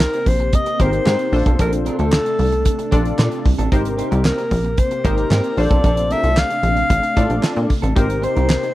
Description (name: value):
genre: early-eighties boogie funk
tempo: 113 BPM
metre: 4/4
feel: straight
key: unclear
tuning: A4 = 440 Hz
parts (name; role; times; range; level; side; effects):
- breathy alto saxophone; melody; 0.0-8.7 s; A4 to F5; -21 LUFS; left 1 dB; none
- funky polysynth comp; accompaniment; 0.0-8.7 s; D4 to D5; -24 LUFS; left 2 dB; chorus
- soft string machine; sustained chords; 0.2-8.7 s; C3 to G4; -27 LUFS; equal; ensemble chorus
- electric guitar at the edge of break-up; riff; 0.0-8.7 s; C4 to C5; -29 LUFS; right 4 dB; wide subtle chorus
- plucky analog bass; bass; 0.0-8.6 s; Ab1 to Bb2; -19 LUFS; equal; none
- damped 70s drum kit; drums; 0.0-8.7 s; handclaps, hi-hat, kick drum, snare drum; -19 LUFS; equal; none
room: small room reverb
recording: dry, close 1970s-style studio recording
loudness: -15 LUFS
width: side -16 dB against mid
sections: 0.0-8.7 A section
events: none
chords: 0.0 Abmaj9; 1.3 Bbmaj9; 3.7 Abmaj9; 5.6 Bbmaj9; 8.0 Abmaj9